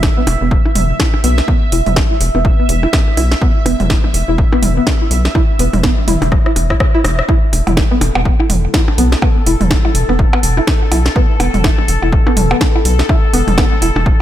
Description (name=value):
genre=minimal techno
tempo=124 BPM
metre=4/4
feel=swing 59% on 16ths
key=unclear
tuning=A4 = 439 Hz
part: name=rubbery square bass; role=bass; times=0.0-14.1 s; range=E1 to B1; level=-15 LUFS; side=equal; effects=sidechain pumping
part: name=electronic kick drum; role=drums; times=0.0-14.2 s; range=none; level=-14 LUFS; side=equal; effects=none
part: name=techno drum kit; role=drums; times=0.0-13.9 s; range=hi-hat, rim click, snare drum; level=-20 LUFS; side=right 1 dB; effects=none
part: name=bubbling stepped-filter texture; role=texture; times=0.0-14.2 s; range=A4 to E5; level=-22 LUFS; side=left 1 dB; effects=chorus, built-in reverb, sidechain pumping
part: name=string-like resonator pluck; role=riff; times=0.2-13.9 s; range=B3 to E5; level=-20 LUFS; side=equal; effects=analog chorus, sidechain pumping, analog delay
part: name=electronic percussion blips and toms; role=percussion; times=0.3-14.0 s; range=none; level=-21 LUFS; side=right 1 dB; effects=ping-pong delay
room=light reverb, digital ambience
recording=none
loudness=-11 LUFS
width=side -12 dB against mid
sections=0.0-14.2 A section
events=filter sweep on synth pluck 0.0-14.2; drum fill 6.3-7.3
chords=0.0 E5